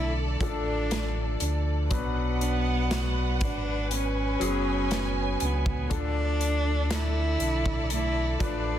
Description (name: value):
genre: pop ballad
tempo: 60 BPM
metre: 4/4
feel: straight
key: unclear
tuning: A4 = 441 Hz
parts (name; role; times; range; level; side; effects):
- dark cello; melody; 0.0-8.8 s; B3 to E4; -31 LUFS; right 1 dB; none
- clear concert grand piano; accompaniment; 0.0-8.8 s; B2 to B4; -34 LUFS; left 6 dB; none
- warm studio string section; sustained chords; 0.0-8.8 s; A4 to G#5; -35 LUFS; right 1 dB; none
- nylon-string guitar; arpeggios; 0.0-8.8 s; B2 to A4; -38 LUFS; right 7 dB; none
- sub bass with octave; bass; 0.0-8.8 s; F#1 to D2; -28 LUFS; equal; none
- modern studio drum kit; drums; 0.4-8.6 s; hi-hat, kick drum, snare drum; -32 LUFS; equal; none
room: light reverb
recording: dense, heavily limited modern master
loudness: -25 LUFS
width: side -10 dB against mid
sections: 0.0-8.8 A section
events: none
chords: 0.0 Dm; 1.9 Bm; 5.9 Dm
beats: 0.91 | 1.91 2.91 3.91 4.91 | 5.91 6.91 7.91